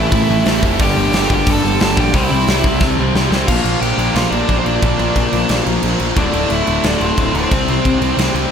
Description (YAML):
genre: punk rock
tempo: 178 BPM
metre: 4/4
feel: straight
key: unclear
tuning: A4 = 441 Hz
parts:
  - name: nasal lead guitar with a parked wah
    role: melody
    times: 0.0-8.3 s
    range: C4 to A5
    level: -21 LUFS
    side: equal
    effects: overdrive, ping-pong delay
  - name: overdriven semi-hollow guitar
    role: riff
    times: 0.0-8.5 s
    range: D2 to C5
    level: -23 LUFS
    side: right 1 dB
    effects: none
  - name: tight distorted guitar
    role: riff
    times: 0.0-8.5 s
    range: D2 to C4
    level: -21 LUFS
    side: left 13 dB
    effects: distortion
  - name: tight distorted guitar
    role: riff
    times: 0.0-8.5 s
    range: D2 to C4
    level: -22 LUFS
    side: right 13 dB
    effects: distortion
  - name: fuzz picked electric bass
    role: bass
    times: 0.0-8.4 s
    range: D1 to C2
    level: -20 LUFS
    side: equal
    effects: overdrive
  - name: big rock drum kit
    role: drums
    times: 0.1-8.4 s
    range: crash cymbal, hi-hat, kick drum, snare drum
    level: -18 LUFS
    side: equal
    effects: none
room: light reverb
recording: none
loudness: -13 LUFS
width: side -7 dB against mid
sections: 0.0-3.5 A section; 3.5-8.5 B section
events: drum fill 2.8-3.5; half time 3.5-8.5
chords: 0.0 Am; 0.8 Gm; 2.1 C; 3.5 Bb; 6.2 D5; 7.5 C5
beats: 0.13 0.46 | 0.80 1.13 1.47 1.80 | 2.14 2.47 2.81 3.14 | 3.48 3.82 4.15 4.49 | 4.83 5.16 5.50 5.83 | 6.17 6.51 6.84 7.18 | 7.52 7.85 8.19